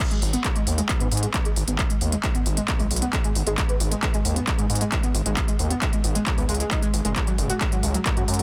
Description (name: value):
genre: driving peak-time techno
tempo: 134 BPM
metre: 4/4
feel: straight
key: G# minor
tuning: A4 = 442 Hz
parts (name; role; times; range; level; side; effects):
- swarming drone; drone; 1.7-8.4 s; G#2 to G#3; -38 LUFS; equal; none
- electronic kick drum; drums; 0.0-8.1 s; none; -27 LUFS; equal; none
- techno drum kit; drums; 0.0-8.4 s; crash cymbal, handclaps, hi-hat; -30 LUFS; equal; none
- overdriven synth lead; riff; 0.1-8.4 s; F#3 to F#4; -32 LUFS; equal; distortion, tube saturation, analog chorus, sidechain pumping, digital delay
- gritty driven synth bass; bass; 0.2-8.4 s; F#1 to G#2; -27 LUFS; equal; sidechain pumping
room: light reverb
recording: dense, heavily limited modern master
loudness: -23 LUFS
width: mono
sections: 0.0-8.4 A section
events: none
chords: none